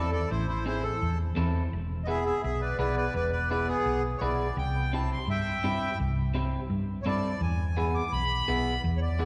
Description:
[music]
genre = latin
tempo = 169 BPM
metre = 4/4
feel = straight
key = unclear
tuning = A4 = 440 Hz
[part]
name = accordion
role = melody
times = 0.0-9.3 s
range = B3 to D6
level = -34 LUFS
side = equal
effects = none
[part]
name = electric guitar at the edge of break-up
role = accompaniment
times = 0.0-9.3 s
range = B3 to A4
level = -36 LUFS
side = equal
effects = none
[part]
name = hollow-body short-scale fingered electric bass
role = bass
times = 0.0-9.3 s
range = E1 to G2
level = -32 LUFS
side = equal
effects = none
[sound]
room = wet church reverb, RT60 3.0 s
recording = recorded in a church or concert hall, nothing above 10.3 kHz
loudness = -29 LUFS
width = mono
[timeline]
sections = 0.0-9.3 A section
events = accordion solo 0.0-9.3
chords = 0.0 Am; 1.7 E7; 4.6 C; 7.4 E7

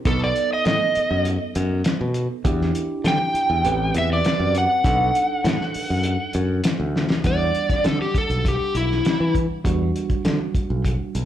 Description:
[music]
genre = straight-eighth soul blues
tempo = 100 BPM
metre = 4/4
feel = straight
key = E minor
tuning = A4 = 440 Hz
[part]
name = overdriven slide guitar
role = melody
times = 0.1-9.3 s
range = E4 to G5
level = -22 LUFS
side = right 1 dB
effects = slapback echo, digital delay
[part]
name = tine electric piano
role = accompaniment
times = 0.1-11.3 s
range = G3 to F#5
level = -29 LUFS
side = right 7 dB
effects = medium stereo tremolo, slapback echo
[part]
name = modern bright fingered electric bass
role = bass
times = 0.1-11.3 s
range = A1 to E3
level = -23 LUFS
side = left 1 dB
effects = none
[part]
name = cloth-damped thuddy drum kit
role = drums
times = 0.1-11.3 s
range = hi-hat, kick drum, snare drum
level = -24 LUFS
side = equal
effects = none
[sound]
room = light reverb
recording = live gig heard through the venue's PA, club reverb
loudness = -19 LUFS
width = side -11 dB against mid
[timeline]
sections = 0.0-7.2 A section; 7.2-11.3 B section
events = electric slide guitar solo 0.0-7.2; drum fill 6.9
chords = 0.1 B7; 2.5 Em7; 3.6 Am9; 4.8 B7#9 (rootless); 7.2 Em9

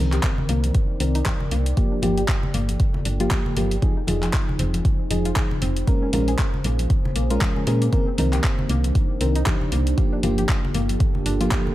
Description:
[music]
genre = deep house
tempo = 117 BPM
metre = 4/4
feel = swing 58% on 16ths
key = C minor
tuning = A4 = 440 Hz
[part]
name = deep dark ambient pad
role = sustained chords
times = 0.1-11.7 s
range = Ab3 to G5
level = -32 LUFS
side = right 2 dB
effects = chorus, built-in reverb, sidechain pumping
[part]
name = soft round pluck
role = arpeggios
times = 0.0-11.6 s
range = Bb3 to Bb4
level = -32 LUFS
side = left 4 dB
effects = chorus, sidechain pumping, analog delay
[part]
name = mellow FM electric piano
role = stabs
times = 0.0-11.7 s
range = Eb3 to Bb4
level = -26 LUFS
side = equal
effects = chorus, sidechain pumping, low-pass filter, tape echo
[part]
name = woody FM bass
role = bass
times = 0.0-11.5 s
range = F1 to Bb2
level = -22 LUFS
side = equal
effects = none
[part]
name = deep house drum kit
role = drums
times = 0.1-11.6 s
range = handclaps, hi-hat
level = -30 LUFS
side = equal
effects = none
[part]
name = electronic kick drum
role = drums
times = 0.2-11.6 s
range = none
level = -22 LUFS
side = equal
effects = none
[part]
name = congas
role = percussion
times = 0.4-11.7 s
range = none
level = -31 LUFS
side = left 2 dB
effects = none
[sound]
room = little or no reverb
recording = none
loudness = -19 LUFS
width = side -15 dB against mid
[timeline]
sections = 0.0-11.7 A section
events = filter sweep on FM electric piano 0.0-11.7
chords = 0.0 Cm7; 1.8 Gm7; 3.8 Fm7; 5.9 Bbm7; 7.9 Cm7; 10.0 Gm7

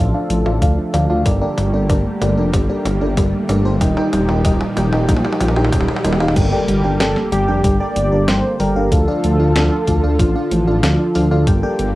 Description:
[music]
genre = synthwave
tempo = 94 BPM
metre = 4/4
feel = straight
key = G minor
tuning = A4 = 440 Hz
[part]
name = warm analog pad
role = sustained chords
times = 0.0-12.0 s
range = Bb2 to A4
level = -24 LUFS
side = right 1 dB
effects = chorus, sidechain pumping, cassette tape
[part]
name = soft round pluck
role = arpeggios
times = 0.0-11.9 s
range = F3 to G5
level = -22 LUFS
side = right 1 dB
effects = wide subtle chorus, cassette tape, analog delay
[part]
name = FM electric piano with soft pad layer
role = stabs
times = 0.0-11.9 s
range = D4 to G5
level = -22 LUFS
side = left 1 dB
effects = chorus, phaser, vintage 12-bit sampler grit, low-pass filter, cassette tape, analog delay, plate reverb
[part]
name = dark detuned saw bass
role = bass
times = 0.0-11.9 s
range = Eb1 to D2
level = -18 LUFS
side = equal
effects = tube saturation
[part]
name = riser, swell and impact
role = sound effects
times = 0.8-8.9 s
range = none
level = -29 LUFS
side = right 1 dB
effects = none
[part]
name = detuned 8-bit digital drum machine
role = drums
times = 0.3-11.9 s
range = crash cymbal, hi-hat, snare drum, toms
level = -24 LUFS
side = equal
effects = high-pass filter on toms, small room ambience, high-pass filter on hats, high-pass filter on cymbals, high-pass filter on snare
[part]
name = electronic kick drum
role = drums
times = 0.6-11.6 s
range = none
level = -18 LUFS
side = equal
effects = small room ambience
[part]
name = wide unison lead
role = melody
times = 7.0-11.2 s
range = F4 to D5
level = -22 LUFS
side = equal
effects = cassette tape, analog delay
[sound]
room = light reverb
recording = home recording on cassette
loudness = -14 LUFS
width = side -17 dB against mid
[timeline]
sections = 0.0-6.4 A section; 6.4-12.0 B section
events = drum fill 0.0-6.4; filter sweep on FM electric piano 0.0-6.4; swell 5.1-6.4; impact 6.4-8.9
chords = 0.0 Dm; 1.3 Gmadd9; 3.8 Eb; 6.4 Gmadd9; 8.9 Dm

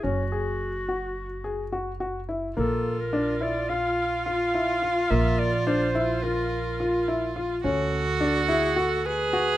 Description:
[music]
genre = contemporary instrumental, contemporary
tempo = 213 BPM (eighths)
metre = 9/8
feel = straight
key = unclear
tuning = A4 = 440 Hz
[part]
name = breathy clarinet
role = melody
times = 0.0-9.6 s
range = F#4 to E#5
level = -29 LUFS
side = left 1 dB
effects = none
[part]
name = warm grand piano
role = arpeggios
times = 0.0-9.5 s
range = A#3 to G#4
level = -28 LUFS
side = left 2 dB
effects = none
[part]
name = upright bass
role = bass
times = 0.0-9.6 s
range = F#1 to D2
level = -31 LUFS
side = right 2 dB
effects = none
[part]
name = rich viola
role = second line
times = 2.6-9.6 s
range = E#4 to G#4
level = -28 LUFS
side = right 3 dB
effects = none
[sound]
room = light reverb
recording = close, detailed microphones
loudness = -23 LUFS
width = side -14 dB against mid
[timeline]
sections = 0.0-2.6 A section; 2.6-9.6 B section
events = none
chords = 0.0 F#5; 2.6 A#5; 7.6 D

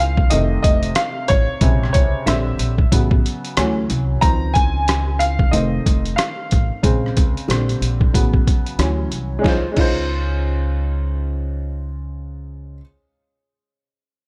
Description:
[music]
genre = hip hop, jazz-hop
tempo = 92 BPM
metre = 4/4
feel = swing 60% on 16ths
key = Db major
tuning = A4 = 440 Hz
[part]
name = clear upright piano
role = accompaniment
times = 0.0-12.8 s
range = C3 to Bb5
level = -24 LUFS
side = equal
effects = none
[part]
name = upright bass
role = bass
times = 0.0-12.8 s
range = F1 to D2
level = -24 LUFS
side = equal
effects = none
[part]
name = trip hop sampler-style drum kit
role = drums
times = 0.2-10.0 s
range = crash cymbal, hi-hat, kick drum, rim click, snare drum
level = -20 LUFS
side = equal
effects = none
[sound]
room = little or no reverb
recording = none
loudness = -18 LUFS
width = mono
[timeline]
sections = 0.0-9.4 A section; 9.4-12.0 B section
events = upright piano solo 0.0-9.4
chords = 0.3 F7; 1.6 Bbm9; 2.3 Bb69; 2.9 A69; 3.6 Dmaj9; 4.2 Dbmaj9; 5.5 F7; 6.8 Bbm9; 7.5 Bb69; 8.1 A69; 8.8 Dmaj9; 9.4 Dbmaj9

